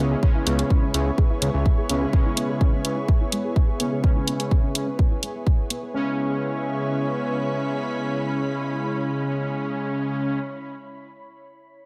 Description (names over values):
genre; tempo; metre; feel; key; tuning
melodic techno; 126 BPM; 4/4; straight; C# minor; A4 = 440 Hz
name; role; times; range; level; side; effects
lush unison pad; sustained chords; 0.0-10.4 s; B3 to C#5; -33 LUFS; equal; chorus, sidechain pumping
soft round pluck; arpeggios; 0.0-6.2 s; G#3 to E5; -34 LUFS; equal; chorus, sidechain pumping, delay
analog synth brass; stabs; 0.0-10.4 s; C#3 to C#4; -29 LUFS; equal; chorus, sidechain pumping, delay
fat analog bass; bass; 0.0-2.1 s; C#2; -25 LUFS; equal; sidechain pumping
ethereal airy pad; texture; 0.2-10.5 s; E4 to B5; -39 LUFS; equal; ensemble chorus, built-in reverb, phaser, sidechain pumping
electronic kick drum; drums; 0.2-5.6 s; none; -22 LUFS; equal; none
electronic hi-hat; drums; 0.5-5.8 s; none; -28 LUFS; equal; none
room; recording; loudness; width
moderate lush hall reverb, RT60 1.7 s; none; -23 LUFS; mono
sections
0.0-5.9 A section; 5.9-9.8 B section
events
fade-out on ambient pad 0.0-5.9; filter sweep on synth arpeggio sound 0.0-5.9; filter sweep on analog polysynth 0.0-5.9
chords
0.0 C#m7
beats
| 0.23 0.70 1.18 1.66 | 2.13 2.61 3.08 3.56 | 4.04 4.51 4.99 5.47 | 5.94 6.42 6.89 7.37 | 7.85 8.32 8.80 9.28